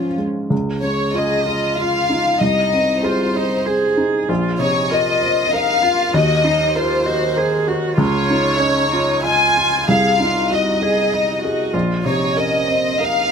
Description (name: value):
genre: neoclassical piano and strings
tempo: 96 BPM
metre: 3/4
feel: rubato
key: Db major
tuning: A4 = 440 Hz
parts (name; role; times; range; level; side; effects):
- dark studio violin section; melody; 0.0-13.3 s; F4 to Ab5; -18 LUFS; left 2 dB; none
- warm cello; second line; 0.0-13.3 s; C4 to Ab4; -23 LUFS; right 4 dB; none
- felt-muted upright piano; accompaniment; 0.0-13.3 s; Bb1 to Eb5; -20 LUFS; equal; none
room: light reverb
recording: none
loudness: -15 LUFS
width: side -6 dB against mid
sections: 0.5-13.3 A section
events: none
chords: 0.0 Db/Ab; 0.5 Dbadd9; 2.4 Ab/C; 4.3 Bbsus2; 6.1 Ebm; 8.0 Dbadd9; 9.9 Ab/C; 11.7 Bbsus2